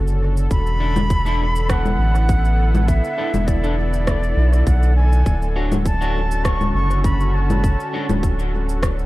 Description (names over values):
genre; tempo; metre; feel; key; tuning
ambient dub; 101 BPM; 4/4; swing 53% on 16ths; unclear; A4 = 440 Hz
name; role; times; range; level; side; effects
warm analog pad; sustained chords; 0.0-9.1 s; D3 to A4; -27 LUFS; right 1 dB; chorus
round analog bass; bass; 0.0-9.1 s; D1 to B1; -18 LUFS; equal; none
electronic shaker, congas and rim click; drums; 0.1-9.1 s; none; -26 LUFS; left 2 dB; dub echo
silver concert flute; melody; 0.5-8.2 s; D5 to C#6; -25 LUFS; equal; dub echo
electronic kick drum; drums; 0.5-9.0 s; none; -20 LUFS; equal; none
electric guitar at the edge of break-up; stabs; 0.8-8.1 s; D4 to C#5; -31 LUFS; left 1 dB; dub echo
room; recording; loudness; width
little or no reverb; none; -16 LUFS; side -18 dB against mid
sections
0.0-9.1 A section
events
none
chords
0.0 Dmaj7; 0.5 E7sus4; 5.3 Dmaj7